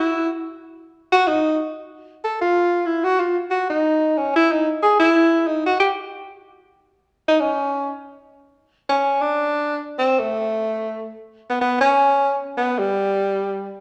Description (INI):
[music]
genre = jazz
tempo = free time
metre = none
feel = none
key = unclear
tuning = A4 = 440 Hz
[part]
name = breathy tenor saxophone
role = solo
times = 0.0-13.7 s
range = G3 to A4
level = -20 LUFS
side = equal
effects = none
[sound]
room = wet large studio reverb, RT60 1.4 s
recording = none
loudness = -20 LUFS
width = mono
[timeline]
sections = 0.0-8.7 A section; 8.7-13.8 B section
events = tenor saxophone solo 0.0-8.7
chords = none